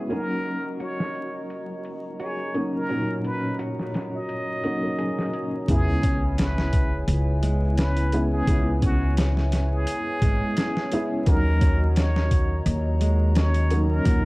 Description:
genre	trip hop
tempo	86 BPM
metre	4/4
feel	swing 54% on 16ths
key	C# dorian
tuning	A4 = 440 Hz
part	felt-muted upright piano	accompaniment	0.0-14.2 s	A#2 to E4	-29 LUFS	equal	harmonic tremolo, low-pass filter
part	dark analog pad	sustained chords	0.0-14.2 s	C#4 to A#5	-34 LUFS	equal	chorus
part	wind-like tuned noise texture	texture	0.0-5.7 s	F#3 to F#4	-42 LUFS	equal	none
part	trumpet with plunger mute	melody	0.1-14.2 s	F#4 to D#5	-32 LUFS	equal	tape echo
part	mellow electric guitar	arpeggios	0.1-14.2 s	G#3 to G#4	-34 LUFS	right 1 dB	spring reverb, low-pass filter, tape echo
part	boom bap sampler-style drum kit	drums	0.1-14.2 s	hi-hat, kick drum, snare drum	-24 LUFS	equal	low-pass filter on hats, low-pass filter on snare, low-pass filter on kick
part	upright bass	bass	5.7-14.2 s	G#1 to D#2	-22 LUFS	equal	tube saturation
part	sub drop	sound effects	5.7-8.5 s	none	-31 LUFS	equal	none
room	digital ambience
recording	dark, warm production, vinyl crackle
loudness	-21 LUFS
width	side -22 dB against mid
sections	0.0-5.7 A section; 5.7-14.2 B section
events	filter sweep on analog synth pad 0.0-5.7; filter sweep on clean electric guitar 0.0-5.7; impact 5.7-8.5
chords	0.1 D#m7; 5.7 C#m7; 11.3 D#m7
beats	| 0.10 0.80 1.50 2.20 | 2.89 3.59 4.29 4.99 | 5.68 6.38 7.08 7.78 | 8.47 9.17 9.87 10.57 | 11.27 11.96 12.66 13.36 | 14.06

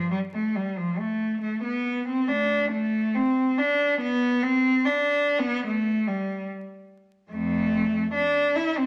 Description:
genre	classical, baroque-style suite movement for unaccompanied cello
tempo	67-73 BPM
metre	3/4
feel	rubato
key	unclear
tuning	A4 = 436 Hz
part	rich cello	solo	0.0-8.9 s	F2 to E4	-25 LUFS	equal	none
room	wet stone room reverb, RT60 1.2 s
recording	vinyl crackle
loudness	-25 LUFS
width	mono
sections	0.0-8.9 A section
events	none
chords	none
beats	0.54 1.41 | 2.28 3.14 4.00 | 4.83 5.66 6.49 | 7.31 8.14

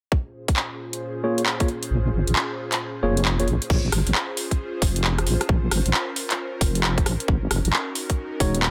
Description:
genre	UK garage, two-step garage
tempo	134 BPM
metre	4/4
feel	swing 64% on 16ths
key	Bb minor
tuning	A4 = 440 Hz
part	airy breathy pad	sustained chords	0.3-8.7 s	Bb2 to C5	-34 LUFS	equal	chorus, sidechain pumping
part	electronic kick drum	drums	0.1-8.5 s	none	-24 LUFS	equal	small room reverb
part	garage drum kit	drums	0.5-8.7 s	crash cymbal, handclaps, hi-hat, rim click	-27 LUFS	equal	small room reverb
part	tine electric piano	stabs	1.2-3.5, 8.4-8.6 s	Ab3 to Db5	-28 LUFS	equal	low-pass filter, delay
part	deep soft wobble bass	bass	1.9-8.7 s	Eb1 to Bb1	-25 LUFS	equal	chorus, tube saturation
room	light reverb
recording	none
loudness	-23 LUFS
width	mono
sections	0.1-3.7 A section; 3.7-8.7 B section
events	filter sweep on analog synth pad 0.1-3.7; kick drops out 1.9-3.7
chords	0.1 Bbm7; 7.3 Ab7sus4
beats	| 0.12 0.56 1.01 1.46 | 1.91 2.36 2.80 3.25 | 3.70 4.15 4.59 5.04 | 5.49 5.94 6.39 6.83 | 7.28 7.73 8.18 8.62

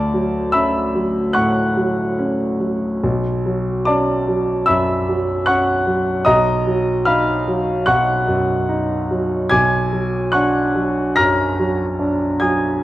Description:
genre	classical, impressionist solo piano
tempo	73 BPM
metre	4/4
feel	rubato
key	unclear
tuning	A4 = 440 Hz
part	clear concert grand piano	solo	0.0-12.8 s	B1 to A#6	-16 LUFS	equal	none
room	moderate scoring stage reverb, RT60 1.6 s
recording	worn, warbling old tape, cassette tape, warbly pitch drift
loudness	-16 LUFS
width	side -15 dB against mid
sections	0.0-12.8 A section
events	none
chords	0.0 Dmaj7; 3.0 Bm9; 6.3 D#madd9/B; 9.5 Bm6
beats	0.54 1.36 2.18 | 3.02 3.86 4.66 5.47 | 6.27 7.08 7.87 8.70 | 9.53 10.34 11.17 12.01 | 12.83

